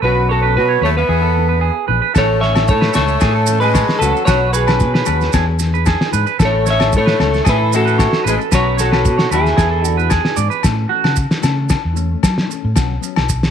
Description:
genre	highlife guitar band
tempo	113 BPM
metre	4/4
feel	straight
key	A major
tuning	A4 = 440 Hz
part	clean electric guitar	melody	0.0-10.1 s	E4 to E5	-18 LUFS	equal	lush chorus, slapback echo
part	mellow electric guitar	accompaniment	0.0-13.2 s	E3 to A4	-28 LUFS	left 16 dB	lush chorus
part	electric guitar through a small old amp	arpeggios	0.0-11.2 s	F#4 to D5	-20 LUFS	right 12 dB	slapback echo
part	fingered electric bass	bass	0.0-13.5 s	A1 to F#3	-18 LUFS	equal	none
part	raspy tenor saxophone	second line	0.1-10.1 s	E3 to C#4	-24 LUFS	left 13 dB	none
part	agogo bells	percussion	2.1-13.3 s	none	-25 LUFS	left 16 dB	none
part	cloth-damped thuddy drum kit	drums	2.2-13.5 s	kick drum, snare drum	-18 LUFS	equal	none
part	maracas	percussion	2.2-13.5 s	none	-27 LUFS	right 16 dB	none
room	light reverb, studio ambience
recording	1960s-style stereo with parts hard left and right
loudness	-12 LUFS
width	side -8 dB against mid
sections	0.0-10.6 A section; 10.6-13.5 B section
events	clean electric guitar solo 10.6-13.5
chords	0.0 Bsus2; 1.1 E7; 2.2 A; 4.3 Bsus2; 5.3 E7; 6.4 A; 8.5 Bsus2; 9.6 E7; 10.6 A; 12.8 Bsus2

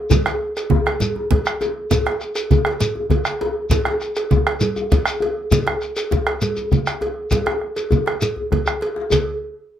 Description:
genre	west african traditional, West African drum ensemble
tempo	133 BPM (dotted quarters)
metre	12/8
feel	straight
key	none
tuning	none
part	bombo	percussion	0.1-9.3 s	none	-20 LUFS	left 1 dB	none
part	congas	percussion	0.1-9.3 s	none	-22 LUFS	right 6 dB	none
part	cowbell	percussion	0.1-9.3 s	none	-24 LUFS	right 2 dB	none
part	djembe	percussion	0.1-9.2 s	none	-25 LUFS	left 6 dB	none
part	shekere	percussion	0.1-9.3 s	none	-25 LUFS	left 2 dB	none
room	light reverb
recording	none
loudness	-18 LUFS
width	side -10 dB against mid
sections	0.0-9.1 A section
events	drum fill 8.4-9.1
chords	none

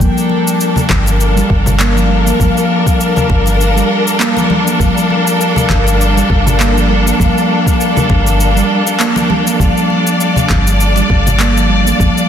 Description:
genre	organic downtempo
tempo	100 BPM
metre	4/4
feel	swing 55% on 16ths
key	G minor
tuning	A4 = 441 Hz
part	clear symphonic string section	sustained chords	0.0-12.3 s	G3 to D5	-15 LUFS	left 1 dB	vintage 12-bit sampler grit, sidechain pumping, shimmer reverb
part	steel tongue drum	arpeggios	0.0-12.2 s	F3 to Bb3	-16 LUFS	right 2 dB	ping-pong delay, shimmer reverb
part	woody FM bass	bass	0.0-12.1 s	G1	-14 LUFS	equal	sidechain pumping
part	electronic cabasa and handclaps	drums	0.0-12.3 s	none	-20 LUFS	left 1 dB	studio reverb
part	electronic kick drum	drums	0.0-12.1 s	none	-15 LUFS	equal	studio reverb
part	wind-like tuned noise texture	texture	0.0-12.3 s	F5	-22 LUFS	left 6 dB	built-in reverb, shimmer reverb
part	congas	percussion	0.3-12.0 s	none	-20 LUFS	left 2 dB	none
room	moderate lush hall reverb, RT60 2.2 s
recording	dense, heavily limited modern master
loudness	-10 LUFS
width	side -9 dB against mid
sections	0.0-12.3 A section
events	none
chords	0.0 Gm7

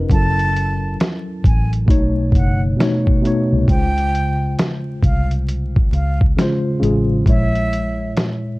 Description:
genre	lo-fi hip hop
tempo	67 BPM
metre	4/4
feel	swing 65% on 16ths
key	unclear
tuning	A4 = 440 Hz
part	mellow tine electric piano	accompaniment	0.0-8.6 s	A#2 to D#5	-20 LUFS	left 1 dB	medium stereo tremolo, cassette tape
part	vintage muted fingered electric bass	bass	0.0-8.1 s	F#1 to C#2	-19 LUFS	equal	none
part	breathy concert flute	melody	0.1-8.1 s	E5 to A5	-24 LUFS	right 1 dB	plate reverb
part	lo-fi sampler-style drum kit	drums	0.1-8.4 s	hi-hat, kick drum, snare drum	-16 LUFS	equal	overdrive, vintage 12-bit sampler grit
room	light reverb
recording	dark, warm production, vinyl crackle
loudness	-15 LUFS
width	side -21 dB against mid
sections	0.0-8.6 A section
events	none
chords	0.1 F#m7; 1.9 B9; 3.7 C#maj7; 7.3 A#m7b5

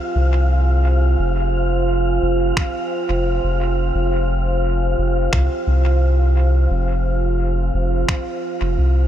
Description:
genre	ambient dub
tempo	87 BPM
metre	4/4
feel	straight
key	F minor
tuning	A4 = 440 Hz
part	deep dark ambient pad	sustained chords	0.0-9.1 s	F4 to Ab5	-22 LUFS	right 2 dB	chorus, built-in reverb
part	wind-like tuned noise texture	texture	0.0-9.1 s	F5	-28 LUFS	left 1 dB	built-in reverb
part	soft dub sub bass	bass	0.2-9.1 s	F1 to C2	-17 LUFS	equal	none
part	electronic finger snaps	drums	2.6-8.2 s	none	-29 LUFS	equal	small room ambience, dub echo
part	electronic kick drum	drums	2.6-8.2 s	none	-23 LUFS	equal	small room ambience
room	little or no reverb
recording	none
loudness	-16 LUFS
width	side -11 dB against mid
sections	0.0-9.1 A section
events	none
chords	0.0 Fmadd9

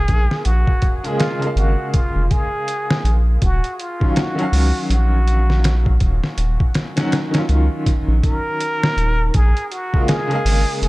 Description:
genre	trip hop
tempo	81 BPM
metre	4/4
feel	swing 60% on 16ths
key	Eb minor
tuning	A4 = 439 Hz
part	trumpet with plunger mute	melody	0.0-10.9 s	F4 to Bb4	-25 LUFS	equal	vintage 12-bit sampler grit, dub echo
part	bright upright piano	accompaniment	0.0-10.9 s	Db3 to F5	-24 LUFS	equal	tremolo, vintage 12-bit sampler grit, tape echo
part	round analog bass	bass	0.0-10.9 s	Eb1 to Db2	-16 LUFS	equal	tube saturation
part	trip hop sampler-style drum kit	drums	0.1-10.9 s	hi-hat, kick drum, snare drum	-19 LUFS	equal	none
room	small room ambience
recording	dark, warm production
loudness	-16 LUFS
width	side -20 dB against mid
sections	0.0-10.9 A section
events	none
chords	0.0 Bbm7; 3.4 Ebm9; 9.3 Bbm7

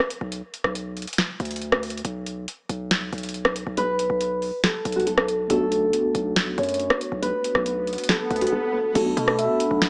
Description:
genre	hip hop, trap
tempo	139 BPM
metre	4/4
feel	half-time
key	B minor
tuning	A4 = 440 Hz
part	booming analog drum machine	drums	0.0-9.9 s	crash cymbal, hi-hat, rim click, snare drum	-26 LUFS	equal	vintage 12-bit sampler grit
part	distorted 808-style bass	bass	0.2-9.9 s	B1 to B2	-33 LUFS	equal	distortion
part	nylon-string guitar	melody	3.8-9.8 s	F#4 to C#5	-26 LUFS	equal	low-pass filter, analog delay
part	mellow tine electric piano	accompaniment	5.5-9.9 s	A3 to F#4	-31 LUFS	equal	ensemble chorus, low-pass filter, analog delay
part	swell	sound effects	7.7-9.0 s	none	-36 LUFS	equal	none
part	dark analog pad	sustained chords	9.2-9.9 s	D4 to B5	-30 LUFS	equal	chorus
part	gliding portamento lead	second line	9.4-9.8 s	E5	-28 LUFS	equal	chorus
room	moderate echo chamber reverb, RT60 2.0 s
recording	echo-heavy mix, small speaker sound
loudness	-24 LUFS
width	mono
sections	0.0-9.0 A section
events	break 0.0-3.8; swell 7.7-9.0; silent gap 8.5-9.0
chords	0.0 Bm; 2.0 B5; 5.5 Bm7

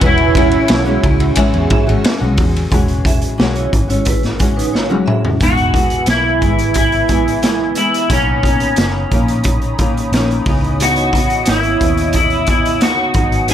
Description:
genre	indie pop, bedroom pop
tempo	89 BPM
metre	4/4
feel	straight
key	E lydian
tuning	A4 = 440 Hz
part	electric guitar through a small old amp	melody	0.0-1.3, 5.4-13.5 s	C#4 to G#4	-16 LUFS	right 1 dB	analog chorus
part	vibraphone with medium hard mallets	second line	0.0-5.2 s	D#4 to E5	-22 LUFS	right 5 dB	ensemble chorus, tape echo
part	nylon-string guitar	accompaniment	0.0-13.5 s	G#2 to F#4	-20 LUFS	left 3 dB	analog chorus, warbly pitch drift
part	warm analog pad	sustained chords	0.0-13.5 s	B3 to E6	-27 LUFS	equal	chorus
part	vintage muted fingered electric bass	bass	0.0-13.5 s	E1 to G#2	-19 LUFS	equal	none
part	raw garage drum kit	drums	0.0-13.5 s	hi-hat, kick drum, ride cymbal, snare drum, toms	-16 LUFS	equal	none
room	light reverb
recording	none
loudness	-12 LUFS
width	side -10 dB against mid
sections	0.0-2.7 A section; 2.7-5.4 B section; 5.4-13.5 C section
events	drum fill 4.7-5.4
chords	0.0 E69; 5.4 Emaj7; 8.1 Bmaj9; 10.5 C#m9

